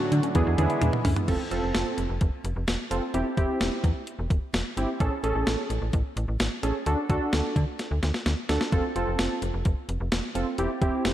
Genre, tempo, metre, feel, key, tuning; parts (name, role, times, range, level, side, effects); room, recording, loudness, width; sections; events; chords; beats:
synth-pop; 129 BPM; 4/4; straight; A4 = 440 Hz
warm analog pad; sustained chords; 0.0-1.3 s; A2 to F#4; -31 LUFS; equal; chorus
analog pluck; arpeggios; 0.0-1.3 s; B3 to E4; -32 LUFS; equal; chorus, phaser, analog delay, slapback echo
slap-like FM bass; bass; 0.1-11.1 s; E1 to D3; -28 LUFS; equal
clean 12-bit digital drum machine; drums; 0.1-11.1 s; crash cymbal, hi-hat, kick drum, snare drum, toms; -28 LUFS; equal; overdrive
warm analog keys; accompaniment; 0.3-11.1 s; B3 to A4; -29 LUFS; right 2 dB; chorus, slapback echo
moderate concert hall reverb, RT60 2.1 s; big arena sound; -24 LUFS; side -12 dB against mid
0.0-1.3 A section; 1.3-11.1 B section
drum fill 0.4-1.3, 7.8-8.7
0.4 E7; 1.3 F; 3.1 C/E; 5.0 Amaj7; 6.9 D; 8.7 F; 10.6 C/E
0.35 0.82 | 1.28 1.75 2.21 2.68 | 3.14 3.61 4.07 4.54 | 5.00 5.47 5.93 6.40 | 6.86 7.33 7.79 8.26 | 8.72 9.19 9.65 10.12 | 10.58 11.05